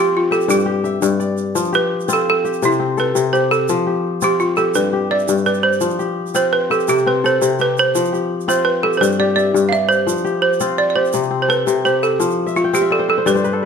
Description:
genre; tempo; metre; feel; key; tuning
west african traditional, West African string and xylophone music; 113 BPM (dotted quarters); 12/8; straight; F lydian; A4 = 440 Hz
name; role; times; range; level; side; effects
balafon; melody; 0.0-13.7 s; E4 to F5; -17 LUFS; right 3 dB; none
kora; arpeggios; 0.0-13.7 s; G2 to G5; -18 LUFS; left 5 dB; none
egg shaker; percussion; 0.3-13.5 s; none; -30 LUFS; right 10 dB; none
room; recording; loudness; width
moderate recital hall reverb, RT60 1.5 s; none; -14 LUFS; side -6 dB against mid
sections
0.0-13.7 A section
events
kora fill 12.5-13.7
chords
0.5 G5; 1.6 F; 2.6 C; 3.7 F; 4.7 G; 5.8 F5; 6.9 C5; 7.9 F5; 9.0 G5; 10.1 F5; 11.1 C5; 12.2 F

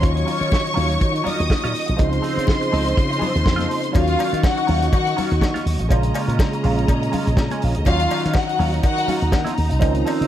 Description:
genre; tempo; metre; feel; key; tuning
disco; 122 BPM; 4/4; swing 56% on 16ths; Eb dorian; A4 = 441 Hz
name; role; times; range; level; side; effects
dark studio string section; second line; 0.0-9.3 s; F4 to Eb6; -23 LUFS; left 1 dB; none
barky tine electric piano; accompaniment; 0.0-10.3 s; Db3 to Gb4; -26 LUFS; left 2 dB; phaser
clean electric guitar; accompaniment; 0.0-10.3 s; F3 to Ab4; -29 LUFS; right 6 dB; wah
dark studio string section; sustained chords; 0.0-10.3 s; Db3 to Db6; -27 LUFS; right 1 dB; none
slap bass with an envelope filter; bass; 0.0-10.3 s; A1 to Eb3; -22 LUFS; equal; none
warm soul drum kit; drums; 0.0-10.3 s; hi-hat, kick drum, snare drum; -22 LUFS; equal; none
congas; percussion; 0.0-10.2 s; none; -31 LUFS; left 6 dB; none
cowbell; percussion; 4.0-10.2 s; none; -33 LUFS; left 6 dB; none
room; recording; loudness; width
little or no reverb; none; -17 LUFS; side -11 dB against mid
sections
0.0-4.0 A section; 4.0-10.3 B section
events
none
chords
0.0 Ebm9; 2.0 Dbmaj9; 4.0 Ebm9; 5.9 Bbm7; 7.9 Ebm9

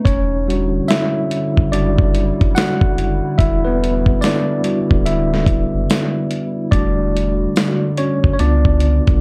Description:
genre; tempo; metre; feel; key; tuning
lo-fi hip hop; 72 BPM; 4/4; swing 64% on 16ths; E dorian; A4 = 440 Hz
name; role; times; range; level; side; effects
tine electric piano; accompaniment; 0.0-9.2 s; G3 to F#5; -21 LUFS; equal; cassette tape, low-pass filter
warbly tape-like pad; sustained chords; 0.0-9.2 s; D3 to F#4; -26 LUFS; equal; chorus, built-in reverb, low-pass filter
warm sub bass; bass; 0.1-9.2 s; D1 to C#2; -21 LUFS; equal; none
dusty soul sampler-style drum kit; drums; 0.1-9.2 s; hi-hat, kick drum, snare drum; -19 LUFS; equal; none
tambourine; percussion; 0.9-7.8 s; none; -37 LUFS; equal; none
room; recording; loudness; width
little or no reverb; dark, warm production; -17 LUFS; mono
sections
0.0-6.7 A section; 6.7-9.2 B section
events
tine electric piano solo 0.0-6.7, 6.7-9.2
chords
0.1 Em7; 6.7 Em11; 8.4 C#7b9

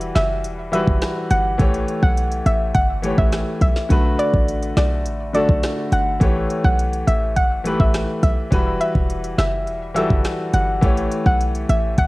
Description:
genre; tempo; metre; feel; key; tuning
dancehall; 104 BPM; 4/4; straight; unclear; A4 = 440 Hz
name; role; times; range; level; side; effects
clear concert grand piano; accompaniment; 0.0-12.1 s; D3 to C#5; -24 LUFS; left 1 dB; sidechain pumping, cassette tape
short 808-style bass; bass; 0.0-12.1 s; E1 to B1; -20 LUFS; equal; none
island pop drum kit; drums; 0.0-12.1 s; hi-hat, kick drum, rim click, snare drum; -21 LUFS; equal; cassette tape
soft round pluck; melody; 0.1-12.1 s; D5 to F#5; -23 LUFS; equal; chorus, cassette tape
room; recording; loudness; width
digital ambience; home recording on cassette; -16 LUFS; side -20 dB against mid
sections
0.0-12.1 A section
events
none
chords
0.0 Emadd9; 1.6 A7; 3.9 Bm7; 6.2 A7; 8.5 Emadd9; 10.8 A7

